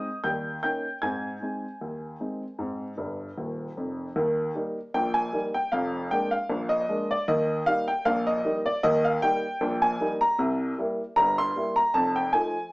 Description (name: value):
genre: ragtime piano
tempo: 77 BPM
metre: 2/4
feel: swing 55% on 16ths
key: Ab major, Eb major from 4.2 s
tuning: A4 = 441 Hz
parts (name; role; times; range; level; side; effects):
- warm upright piano; solo; 0.0-12.7 s; Eb1 to Ab6; -24 LUFS; equal; none
room: wet studio reverb, RT60 0.6 s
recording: band playing live in one room, small speaker sound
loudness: -24 LUFS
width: side -23 dB against mid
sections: 0.0-4.2 A section; 4.2-12.7 B section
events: upright piano fill 3.0-4.2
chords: 0.2 Eb7; 1.0 Ab; 4.2 Eb; 5.7 Bb7/F; 7.3 Eb; 10.4 C7; 11.9 F7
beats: 0.24 | 1.02 1.81 | 2.59 3.38 | 4.16 4.94 | 5.72 6.50 | 7.28 8.05 | 8.83 9.61 | 10.39 11.16 | 11.94 12.72